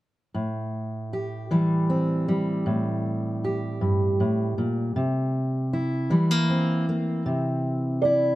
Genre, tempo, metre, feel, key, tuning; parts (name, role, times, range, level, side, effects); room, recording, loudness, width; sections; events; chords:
acoustic folk-pop ballad; 52 BPM (dotted quarters); 6/8; straight; A4 = 440 Hz
fingerpicked steel-string acoustic guitar; accompaniment; 0.3-8.4 s; G2 to G4; -23 LUFS; equal
felt-muted upright piano; melody; 8.0-8.4 s; D5; -19 LUFS; right 1 dB
little or no reverb; -23 LUFS; side -16 dB against mid
0.3-8.4 A section
0.3 Am7; 5.0 C7